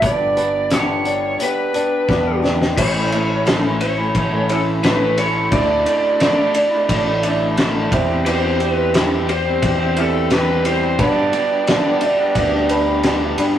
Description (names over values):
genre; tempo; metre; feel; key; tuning
folk rock and heartland rock; 88 BPM; 4/4; straight; A mixolydian; A4 = 440 Hz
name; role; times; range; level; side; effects
lead guitar through a small cranked amp; melody; 0.0-13.0 s; A4 to D5; -20 LUFS; right 1 dB; overdrive
dark grand piano; accompaniment; 0.0-13.6 s; C4 to B5; -28 LUFS; right 2 dB; none
picked twelve-string acoustic guitar; accompaniment; 0.0-13.6 s; G2 to G4; -25 LUFS; left 3 dB; none
electric guitar through a small old amp; riff; 0.0-13.6 s; G2 to G4; -22 LUFS; right 1 dB; none
picked electric bass; bass; 0.0-13.6 s; G1 to G2; -23 LUFS; equal; none
loose indie drum kit; drums; 0.0-13.5 s; crash cymbal, hi-hat, kick drum, ride cymbal, snare drum; -20 LUFS; left 1 dB; none
room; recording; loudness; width
moderate stone room reverb, RT60 1.1 s; rough rehearsal-room recording; -15 LUFS; side -10 dB against mid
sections
0.0-2.8 A section; 2.8-13.6 B section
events
drum fill 2.1-2.8; grand piano fill 11.7-13.6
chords
0.0 G; 2.8 A; 5.5 Dsus2; 7.9 C/E; 11.0 G